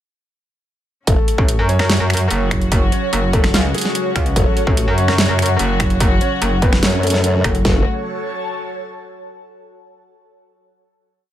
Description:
heavy wobble dubstep; 146 BPM; 4/4; half-time; F# minor; A4 = 440 Hz
warm concert grand piano; melody; 1.1-7.8 s; G#3 to C#5; -26 LUFS; left 2 dB; dub echo
dark studio string section; sustained chords; 1.1-7.8 s; C#3 to F#4; -26 LUFS; left 3 dB; sidechain pumping
formant-sweep wobble bass; bass; 1.1-1.2, 4.4-7.8 s; F#1 to F#2; -17 LUFS; equal; chorus, overdrive
dubstep drum kit; drums; 1.1-7.7 s; kick drum, snare drum; -17 LUFS; equal; small room ambience
dubstep drum kit; drums; 1.1-7.6 s; finger snaps, hi-hat, snare drum; -20 LUFS; right 1 dB; small room ambience
airy breathy pad; texture; 1.1-9.3 s; F#3 to A5; -25 LUFS; right 1 dB; chorus, phaser, sidechain pumping
metallic wobble bass; bass; 1.4-7.6 s; F#1 to F#2; -17 LUFS; equal; chorus, overdrive
digital ambience; -14 LUFS; side -12 dB against mid
1.1-7.6 drop; 7.6-9.3 final chord
drop 1.1-7.6
1.1 F#m

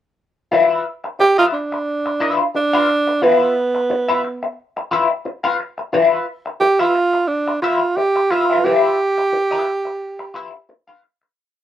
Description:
funk; 88 BPM; 4/4; swing 56% on 16ths; G mixolydian; A4 = 441 Hz
electric guitar at the edge of break-up; accompaniment; 0.5-11.3 s; F4 to F5; -18 LUFS; left 4 dB; wah, lush chorus
breathy tenor saxophone; melody; 1.2-10.7 s; B3 to G4; -16 LUFS; right 2 dB
moderate studio reverb, RT60 0.6 s; rough home demo mix; -15 LUFS; side -11 dB against mid
0.5-11.4 A section
fade-out 8.7-11.4
0.5 G6

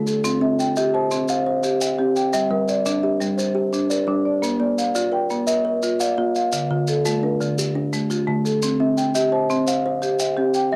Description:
southern african traditional, mbira-style interlocking cycle; 114 BPM (dotted quarters); 12/8; straight; A4 = 439 Hz
kalimba; arpeggios; 0.0-10.8 s; D3 to G5; -25 LUFS; equal; cassette tape
marimba with medium mallets; arpeggios; 0.0-10.8 s; D3 to A5-29c; -24 LUFS; equal; cassette tape
maracas; percussion; 0.1-10.7 s; -33 LUFS; equal
light reverb; home recording on cassette; -21 LUFS; mono
0.0-10.7 A section
0.2 C; 2.3 Gm; 4.4 Bb; 6.5 Dm; 8.6 C

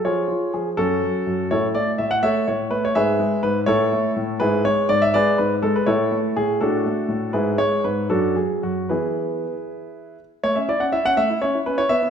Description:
classical-period piano sonatina; 82 BPM (dotted quarters); 6/8; rubato; A major from 4.4 s; A4 = 440 Hz
warm concert grand piano; solo; 0.0-12.1 s; F#2 to F#5; -18 LUFS; equal
wet recital hall reverb, RT60 1.7 s; -18 LUFS; side -7 dB against mid
0.0-10.4 A section; 10.4-12.1 B section
0.0 C#/E#; 0.8 F#m; 1.5 A; 3.0 E/G#; 3.7 A; 4.4 E/G#; 5.9 A; 6.6 D/A; 7.3 E/G#; 8.1 D/F#; 8.9 E; 10.4 A

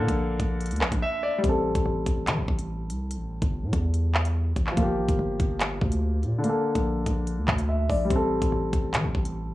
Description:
hip hop, drill; 144 BPM; 4/4; half-time; A phrygian; A4 = 439 Hz
bright concert grand piano; accompaniment; 0.0-9.5 s; D3 to E5; -28 LUFS; left 1 dB; low-pass filter
distorted 808-style bass; bass; 0.0-9.5 s; G1 to E3; -27 LUFS; equal; distortion
drill drum kit; drums; 0.1-9.3 s; handclaps, hi-hat, kick drum, rim click; -27 LUFS; equal
digital ambience; worn, warbling old tape, cassette tape, warbly pitch drift, small room reverb; -23 LUFS; side -16 dB against mid
0.0-1.4 A section; 1.4-9.5 B section
drums muted 1.0-1.4
0.0 Bbmaj7; 1.4 Am7; 4.8 Gm7; 6.4 Bbmaj7; 8.1 Am7

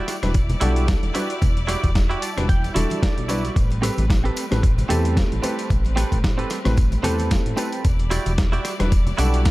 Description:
nu-disco, nu disco; 112 BPM; 4/4; swing 56% on 16ths; A dorian; A4 = 438 Hz
bright studio string section; sustained chords; 0.0-9.5 s; G3 to D5; -32 LUFS; left 1 dB; sidechain pumping
direct-recorded clean electric guitar; riff; 0.0-9.5 s; C4 to A5; -28 LUFS; right 3 dB; analog chorus
dusty soul sampler-style drum kit; drums; 0.1-9.5 s; hi-hat, rim click, snare drum; -29 LUFS; equal; overdrive
tambourine and congas; percussion; 0.1-9.5 s; -32 LUFS; left 1 dB
dark concert grand piano; accompaniment; 0.2-9.5 s; G3 to F#5; -27 LUFS; left 1 dB; sidechain pumping
chorused synth bass; bass; 0.2-9.5 s; E1 to E2; -22 LUFS; equal
electronic kick drum; drums; 0.3-9.5 s; -20 LUFS; equal; overdrive
digital ambience; dark, warm production; -18 LUFS; side -18 dB against mid
0.0-9.5 A section
clean electric guitar fill 2.0-3.6
0.0 Em9; 3.6 Am9; 7.8 Em9

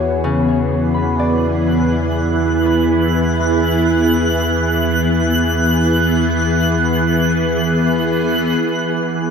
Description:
ambient; free time; E mixolydian; A4 = 440 Hz
evolving wavetable pad; sustained chords; 0.0-9.3 s; E3 to G#4; -16 LUFS; right 1 dB; ensemble chorus, built-in reverb, phaser
Celtic harp; arpeggios; 0.0-7.3 s; C#3 to B5; -24 LUFS; left 3 dB; tape echo
warm sub bass; bass; 0.0-9.3 s; E2; -22 LUFS; equal
analog drone; drone; 0.0-9.3 s; E3 to B3; -22 LUFS; left 2 dB; chorus
twinkling granular texture; texture; 1.1-9.3 s; F#6; -22 LUFS; right 1 dB; built-in reverb
wet cathedral reverb, RT60 6.0 s; in a vast, echoing space; -14 LUFS; side -6 dB against mid
0.0-8.6 A section
fade-in on sub bass 0.0-8.6; fade-in on synth drone 0.0-8.6; fade-out on harp 0.0-8.6; filter sweep on ambient pad 0.0-8.6
0.0 Eadd9

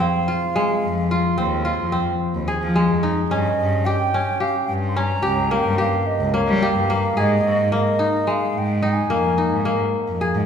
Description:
contemporary instrumental, chamber music in an uneven meter; 109 BPM; 7/4; straight; F minor; A4 = 437 Hz
baroque flute; melody; 0.0-9.9 s; Db5 to C6; -24 LUFS; right 2 dB
kora; arpeggios; 0.0-10.5 s; Ab3 to Ab4; -21 LUFS; equal
rich cello; bass; 0.8-10.5 s; Db2 to G3; -22 LUFS; left 1 dB
wet recital hall reverb, RT60 1.8 s; recorded in a church or concert hall; -18 LUFS; side -7 dB against mid
0.0-10.5 A section
0.0 Fm7; 3.3 Eb7/G; 7.2 Absus2

